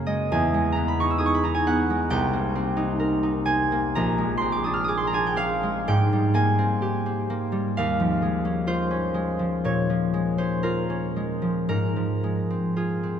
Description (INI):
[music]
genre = classical, solo harp piece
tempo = 55-67 BPM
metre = 4/4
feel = rubato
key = Ab major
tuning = A4 = 440 Hz
[part]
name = concert harp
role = solo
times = 0.0-13.2 s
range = Bb1 to F6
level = -22 LUFS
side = equal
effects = none
[sound]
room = wet cathedral reverb, RT60 5.5 s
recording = none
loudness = -22 LUFS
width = side -8 dB against mid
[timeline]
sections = 0.0-13.2 A section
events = none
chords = 0.3 Emaj7; 2.1 Cm7; 4.0 Bb9; 5.9 Abmaj9; 7.7 Eb9sus4; 11.7 Ab6